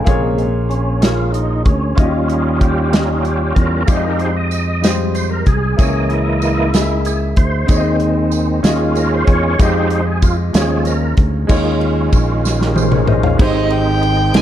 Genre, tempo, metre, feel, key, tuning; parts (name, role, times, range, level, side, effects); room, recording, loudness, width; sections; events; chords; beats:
slow gospel; 63 BPM (dotted quarters); 6/8; straight; A4 = 439 Hz
warm upright piano; accompaniment; 0.0-14.4 s; Ab2 to Ab5; -21 LUFS; left 1 dB
overdriven tonewheel organ; sustained chords; 0.0-14.4 s; C3 to Eb5; -20 LUFS; right 2 dB; slow rotary speaker, chorus vibrato
fingered electric bass; bass; 0.0-14.4 s; Ab1 to F2; -18 LUFS; equal
natural country drum kit; drums; 0.1-14.4 s; crash cymbal, hi-hat, kick drum, ride cymbal, snare drum, toms; -15 LUFS; equal
tambourine; percussion; 3.9-13.1 s; -32 LUFS; right 8 dB
clear violin; melody; 13.4-14.4 s; Eb5 to Ab5; -18 LUFS; right 3 dB; slapback echo
light reverb; dark, warm production; -13 LUFS; side -11 dB against mid
0.0-11.5 A section; 11.5-13.4 B section; 13.4-14.4 C section
tonewheel organ solo 0.0-11.5; drum fill 12.4-13.4
0.1 Bbm7; 2.0 Eb9; 3.9 Fm9; 5.8 Dbm6; 7.7 Ab/Eb; 8.6 Eb9sus4; 9.6 Fm9; 10.5 Eb9sus4; 13.4 Abmaj7
| 0.07 1.03 | 1.98 2.93 | 3.88 4.83 | 5.79 6.74 | 7.69 8.64 | 9.59 10.54 | 11.49 12.45 | 13.40 14.35